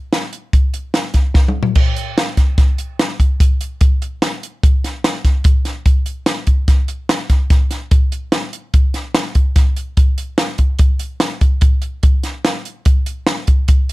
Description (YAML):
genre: rock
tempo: 146 BPM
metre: 5/4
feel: straight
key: none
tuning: none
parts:
  - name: compact cocktail drum kit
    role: drums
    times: 0.1-13.9 s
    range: crash cymbal, hi-hat, kick drum, snare drum, toms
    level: -13 LUFS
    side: equal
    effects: none
room: little or no reverb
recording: dark, warm production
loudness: -14 LUFS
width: side -20 dB against mid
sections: 0.0-1.8 A section; 1.8-13.9 B section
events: drum fill 1.4-1.8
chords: none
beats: 0.12 0.54 0.95 1.36 | 1.77 2.18 2.59 3.00 3.40 | 3.81 4.22 4.63 5.04 5.45 | 5.86 6.27 6.68 7.09 7.51 | 7.92 8.33 8.74 9.15 9.57 | 9.98 10.39 10.80 11.22 11.63 | 12.04 12.45 12.87 13.28 13.69